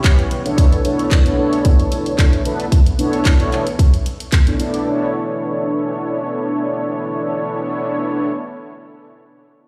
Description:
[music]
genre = nu-disco, nu disco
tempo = 112 BPM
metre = 4/4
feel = swing 54% on 16ths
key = B minor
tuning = A4 = 441 Hz
[part]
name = mellow synth brass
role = accompaniment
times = 0.0-8.3 s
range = B3 to D5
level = -22 LUFS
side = equal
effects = chorus, digital delay
[part]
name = electronic kick drum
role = drums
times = 0.0-4.4 s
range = none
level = -16 LUFS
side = equal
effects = studio reverb
[part]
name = pop drum kit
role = drums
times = 0.0-4.8 s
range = handclaps, hi-hat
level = -28 LUFS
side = equal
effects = studio reverb
[sound]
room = light reverb, digital ambience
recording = played on a big sound system in a bare room, stone room reverb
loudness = -17 LUFS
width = mono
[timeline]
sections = 0.0-4.9 A section; 4.9-9.1 B section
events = none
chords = 0.0 C#m7b5; 0.6 Bm11

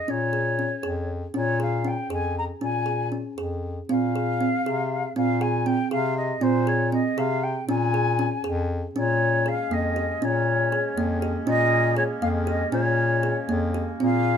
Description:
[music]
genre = contemporary instrumental, chamber music in an uneven meter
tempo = 237 BPM (eighths)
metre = 5/8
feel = straight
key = Bb dorian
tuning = A4 = 440 Hz
[part]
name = mellow concert flute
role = melody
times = 0.0-14.4 s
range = C5 to Bb5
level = -26 LUFS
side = left 2 dB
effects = none
[part]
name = kalimba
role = arpeggios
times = 0.1-14.4 s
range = Bb3 to Ab4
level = -28 LUFS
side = right 4 dB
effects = none
[part]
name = clear bass clarinet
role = bass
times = 0.1-14.4 s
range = F2 to C3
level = -26 LUFS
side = left 2 dB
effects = none
[part]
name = clear woodwind section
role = sustained chords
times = 8.9-14.4 s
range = Ab3 to Ab4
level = -33 LUFS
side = equal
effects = none
[sound]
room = light reverb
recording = close, detailed microphones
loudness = -22 LUFS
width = side -8 dB against mid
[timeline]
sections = 0.0-8.9 A section; 8.9-14.4 B section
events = none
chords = 0.0 Bbm7; 3.9 Fm/Bb; 7.7 Bbm7

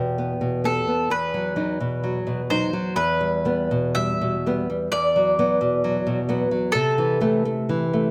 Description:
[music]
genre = romantic duo for mandolin and classical guitar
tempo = 58-67 BPM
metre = 4/4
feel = rubato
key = E minor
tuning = A4 = 438 Hz
[part]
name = mandolin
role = melody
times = 0.0-8.1 s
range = G4 to E5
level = -26 LUFS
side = equal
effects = none
[part]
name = nylon-string guitar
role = accompaniment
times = 0.0-8.1 s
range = E2 to G4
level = -25 LUFS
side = equal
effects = none
[sound]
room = moderate recital hall reverb, RT60 1.5 s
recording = close, detailed microphones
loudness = -23 LUFS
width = mono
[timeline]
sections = 0.0-8.1 A section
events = none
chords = 0.0 Em; 1.1 B/E; 3.0 Em; 4.9 Bm/E; 6.7 Am/C

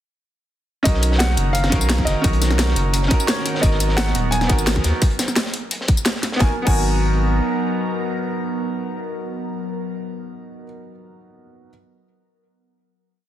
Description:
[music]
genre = liquid drum and bass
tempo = 173 BPM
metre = 4/4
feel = straight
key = G# minor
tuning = A4 = 440 Hz
[part]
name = dark baby grand piano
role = melody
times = 0.8-10.6 s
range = C#5 to G#5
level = -28 LUFS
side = right 1 dB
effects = tape echo
[part]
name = clear grand piano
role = accompaniment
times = 0.8-11.7 s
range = B3 to A#4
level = -26 LUFS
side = right 2 dB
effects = dub echo
[part]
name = airy breathy pad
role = sustained chords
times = 0.9-9.9 s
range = D#3 to A#4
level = -27 LUFS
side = equal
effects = chorus, phaser
[part]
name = saturated sub bass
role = bass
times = 0.9-7.4 s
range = D#1 to D#2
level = -19 LUFS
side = equal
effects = none
[part]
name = crunchy breakbeat drum kit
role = drums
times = 0.9-6.4 s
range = hi-hat, snare drum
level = -28 LUFS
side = equal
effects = high-pass filter on hats, studio reverb, high-pass filter on snare, high-pass filter on room
[part]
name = drum and bass drum kit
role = drums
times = 0.9-6.8 s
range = crash cymbal, hi-hat, snare drum, tambourine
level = -23 LUFS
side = left 1 dB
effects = overdrive, studio reverb
[part]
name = electronic kick drum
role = drums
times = 0.9-6.8 s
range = none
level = -18 LUFS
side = equal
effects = overdrive, studio reverb
[sound]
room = light reverb, small room reverb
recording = dense, heavily limited modern master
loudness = -17 LUFS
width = side -12 dB against mid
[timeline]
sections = 0.9-6.4 drop; 6.4-9.2 final chord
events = drop 0.9-6.4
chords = 0.9 Bmaj9; 3.6 G#m9

